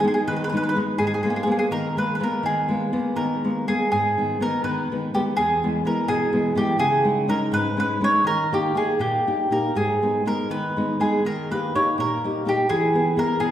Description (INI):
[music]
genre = italian folk, Italian serenade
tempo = 83 BPM (dotted quarters)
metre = 6/8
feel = rubato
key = G# minor, G# harmonic minor from 3.9 s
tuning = A4 = 440 Hz
[part]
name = mandolin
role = melody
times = 0.0-13.5 s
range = G4 to C#5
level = -22 LUFS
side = right 1 dB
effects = none
[part]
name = nylon-string guitar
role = accompaniment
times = 0.0-13.5 s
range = E2 to G#4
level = -24 LUFS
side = left 1 dB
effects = none
[sound]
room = wet recital hall reverb, RT60 1.7 s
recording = heard from further back in the room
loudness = -20 LUFS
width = side -11 dB against mid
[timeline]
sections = 0.0-3.9 A section; 3.9-13.5 B section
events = none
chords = 0.0 G#m; 1.0 G#madd9; 3.9 G#m; 5.4 E; 6.8 C#sus2; 8.3 D#; 9.7 G#m; 11.2 D#; 12.7 E